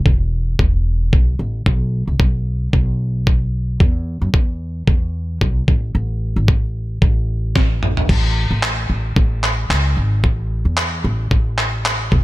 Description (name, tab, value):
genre	acoustic pop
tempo	112 BPM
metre	4/4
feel	swing 55% on 16ths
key	E major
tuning	A4 = 440 Hz
part	upright bass	bass	0.0-12.2 s	E1 to F#2	-18 LUFS	equal	none
part	dusty soul sampler-style drum kit	drums	0.1-12.2 s	crash cymbal, handclaps, kick drum, snare drum, toms	-16 LUFS	equal	none
room	little or no reverb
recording	none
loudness	-15 LUFS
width	side -18 dB against mid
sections	0.0-8.1 A section; 8.1-12.2 B section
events	drum fill 7.6-8.1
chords	none